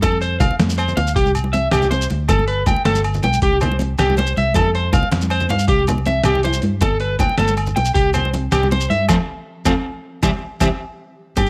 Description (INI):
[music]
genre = highlife guitar band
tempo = 106 BPM (dotted quarters)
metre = 12/8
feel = straight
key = unclear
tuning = A4 = 443 Hz
[part]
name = picked steel-string acoustic guitar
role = accompaniment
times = 0.0-11.5 s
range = E3 to E4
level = -26 LUFS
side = equal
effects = none
[part]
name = electric guitar at the edge of break-up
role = arpeggios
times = 0.0-11.5 s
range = G4 to G5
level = -22 LUFS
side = equal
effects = slapback echo
[part]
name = vintage muted fingered electric bass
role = bass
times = 0.0-11.5 s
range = G1 to G2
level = -23 LUFS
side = equal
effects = none
[part]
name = trip hop sampler-style drum kit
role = drums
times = 0.0-11.5 s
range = hi-hat, kick drum, snare drum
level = -24 LUFS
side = equal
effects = none
[part]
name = agogo bells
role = percussion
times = 0.0-11.5 s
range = none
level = -31 LUFS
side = equal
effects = none
[part]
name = congas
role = percussion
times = 0.0-11.5 s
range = none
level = -27 LUFS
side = equal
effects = none
[part]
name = shekere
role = percussion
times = 0.0-11.5 s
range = none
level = -30 LUFS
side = equal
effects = none
[sound]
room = little or no reverb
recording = none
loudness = -18 LUFS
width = mono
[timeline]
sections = 0.0-11.4 A section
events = band accent 9.1-11.4; drum fill 10.2-11.4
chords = 0.0 F; 1.2 C; 2.3 Gadd9; 3.4 C; 4.6 F; 5.7 C; 6.8 Gadd9; 8.0 C; 9.1 F; 10.2 C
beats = | 0.03 0.60 1.16 1.73 | 2.29 2.86 3.42 3.99 | 4.55 5.12 5.69 6.25 | 6.82 7.39 7.96 8.52 | 9.09 9.66 10.23 10.80 | 11.37